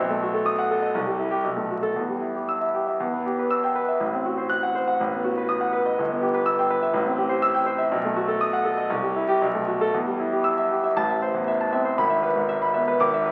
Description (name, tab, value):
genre	classical, virtuoso piano study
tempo	120 BPM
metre	2/4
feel	rubato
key	E minor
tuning	A4 = 437 Hz
part	clear concert grand piano	solo	0.0-13.3 s	G1 to F#6	-24 LUFS	equal	none
room	wet recital hall reverb, RT60 1.6 s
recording	very old 78 rpm record, vinyl crackle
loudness	-24 LUFS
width	mono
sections	0.0-3.0 A section; 3.0-11.0 A section; 11.0-13.3 B section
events	none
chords	0.0 B7; 1.0 C; 1.5 B5; 2.0 Em; 4.0 F#dim/A; 5.0 B7/A; 6.0 Em/G; 6.9 Am7; 7.9 B7; 8.9 C; 9.4 B5; 9.9 Em; 11.0 Am; 12.0 E/G#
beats	0.47 | 0.96 1.46 | 1.98 2.50 | 3.01 3.51 | 4.01 4.50 | 5.00 5.48 | 5.97 6.46 | 6.95 7.43 | 7.92 8.41 | 8.91 9.42 | 9.94 10.46 | 10.98 11.49 | 11.99 12.50 | 13.00